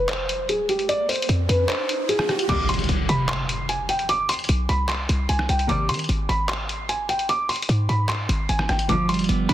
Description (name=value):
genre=hip hop, trap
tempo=150 BPM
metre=4/4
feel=half-time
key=unclear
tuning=A4 = 440 Hz
part: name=felt-muted upright piano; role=melody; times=0.0-9.5 s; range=G4 to D6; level=-24 LUFS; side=right 1 dB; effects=low-pass filter, tape echo
part: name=short 808-style bass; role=bass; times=0.0-9.5 s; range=Eb1 to Eb3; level=-24 LUFS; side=equal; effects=none
part: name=riser and impact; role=sound effects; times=0.3-4.1 s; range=none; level=-31 LUFS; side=right 1 dB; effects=none
part: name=lo-fi sampler-style drum kit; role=drums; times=0.1-9.5 s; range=crash cymbal, handclaps, hi-hat, rim click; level=-27 LUFS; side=left 1 dB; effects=soft clipping on snare
part: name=muted studio string section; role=stabs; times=2.5-2.7, 5.7-5.9, 8.9-9.1 s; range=D2 to G3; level=-29 LUFS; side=left 3 dB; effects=none
part: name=clean electric guitar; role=accompaniment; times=8.9-9.5 s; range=F3 to D4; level=-22 LUFS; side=right 4 dB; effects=spring reverb, low-pass filter
room=little or no reverb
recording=dense, heavily limited modern master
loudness=-20 LUFS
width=side -12 dB against mid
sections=0.0-2.5 A section; 2.5-9.5 B section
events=riser 0.3-2.5; kick muted 1.7-2.5; impact 2.5-4.1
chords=0.0 F5; 2.5 N.C.; 5.7 Abmaj7; 8.9 G7